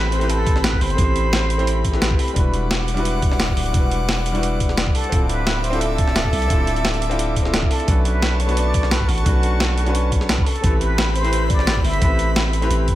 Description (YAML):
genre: liquid drum and bass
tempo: 174 BPM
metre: 4/4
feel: straight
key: unclear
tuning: A4 = 441 Hz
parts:
  - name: trumpet with plunger mute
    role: melody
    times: 0.0-2.2, 4.9-12.5 s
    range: F#4 to E5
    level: -27 LUFS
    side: right 1 dB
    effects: tape echo
  - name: clear grand piano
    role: accompaniment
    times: 0.0-13.0 s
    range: G3 to C5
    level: -25 LUFS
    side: left 1 dB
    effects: tape echo
  - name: airy breathy pad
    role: sustained chords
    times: 0.0-13.0 s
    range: C4 to D6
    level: -28 LUFS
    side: equal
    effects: chorus, sidechain pumping
  - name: long sustained 808-style bass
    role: bass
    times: 0.0-13.0 s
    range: D1 to C2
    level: -21 LUFS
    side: equal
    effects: none
  - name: breakbeat sampler-style drum kit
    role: drums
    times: 0.1-12.9 s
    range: hi-hat, snare drum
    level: -24 LUFS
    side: equal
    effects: studio reverb
  - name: electronic kick drum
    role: drums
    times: 0.5-12.9 s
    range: none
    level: -20 LUFS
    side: equal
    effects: studio reverb
room: digital ambience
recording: none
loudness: -16 LUFS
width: side -14 dB against mid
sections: 0.0-13.0 A section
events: none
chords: 0.0 Am9; 2.4 Em9; 5.1 Dm9; 7.9 Bm9; 10.5 Am9